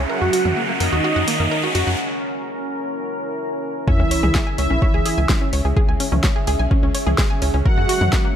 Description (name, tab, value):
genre	melodic techno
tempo	127 BPM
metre	4/4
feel	straight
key	C# dorian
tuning	A4 = 440 Hz
part	deep dark ambient pad	sustained chords	0.0-8.4 s	C#4 to E5	-27 LUFS	equal	chorus, built-in reverb, sidechain pumping
part	wide unison pluck	arpeggios	0.0-8.3 s	A#3 to G#5	-25 LUFS	right 1 dB	sidechain pumping, tape echo
part	tight sequencer bass	bass	0.0-8.1 s	B1 to F#2	-20 LUFS	equal	sidechain pumping
part	bowed-like drone	drone	0.0-8.4 s	C#3 to G#3	-37 LUFS	left 1 dB	none
part	riser and sub drop	sound effects	0.0-5.8 s	none	-25 LUFS	equal	none
part	mellow synth brass	melody	0.1-8.3 s	D#3 to F#4	-25 LUFS	right 2 dB	chorus, sidechain pumping, ping-pong delay
part	soft supersaw	second line	0.1-8.3 s	D#5 to F#5	-26 LUFS	equal	sidechain pumping, tape echo
part	deep house drum kit	drums	0.3-8.2 s	hi-hat, snare drum, toms	-24 LUFS	left 1 dB	none
part	electronic kick drum	drums	3.9-8.2 s	none	-19 LUFS	equal	none
room	light reverb, digital ambience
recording	none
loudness	-17 LUFS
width	side -9 dB against mid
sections	0.0-3.9 A section; 3.9-8.4 B section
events	build-up 0.0-3.9; riser 0.0-2.0; break 2.0-3.9; drop 3.9-8.4; impact 3.9-5.8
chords	0.1 F#; 3.9 C#m; 7.7 F#